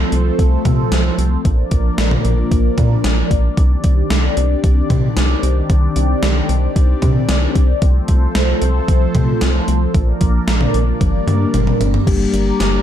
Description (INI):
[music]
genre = synth-pop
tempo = 113 BPM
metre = 4/4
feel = straight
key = C minor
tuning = A4 = 439 Hz
[part]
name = phased analog pad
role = sustained chords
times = 0.0-12.8 s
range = Eb3 to Bb5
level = -20 LUFS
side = left 1 dB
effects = phaser, chorus
[part]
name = rubbery square bass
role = bass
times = 0.0-12.8 s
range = G1 to C3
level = -16 LUFS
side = equal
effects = none
[part]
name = gated 80s digital drum machine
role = drums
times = 0.1-12.7 s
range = crash cymbal, hi-hat, kick drum, snare drum, toms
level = -17 LUFS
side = equal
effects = gated reverb, gated reverb snare, overdrive
[part]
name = mellow tine electric piano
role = accompaniment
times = 12.1-12.8 s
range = G3 to G4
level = -17 LUFS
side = left 5 dB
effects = none
[sound]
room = light reverb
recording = dark, warm production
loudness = -13 LUFS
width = side -10 dB against mid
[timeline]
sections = 0.0-12.1 A section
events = drum fill 11.0-12.1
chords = 0.0 F/C; 1.4 Bb; 3.6 Cmadd9; 7.8 F/C; 9.9 Bb; 11.0 Gm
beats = 0.39 0.92 | 1.45 1.98 2.51 3.04 | 3.57 4.11 4.64 5.17 | 5.70 6.23 6.76 7.29 | 7.82 8.35 8.88 9.41 | 9.95 10.48 11.01 11.54 | 12.07 12.60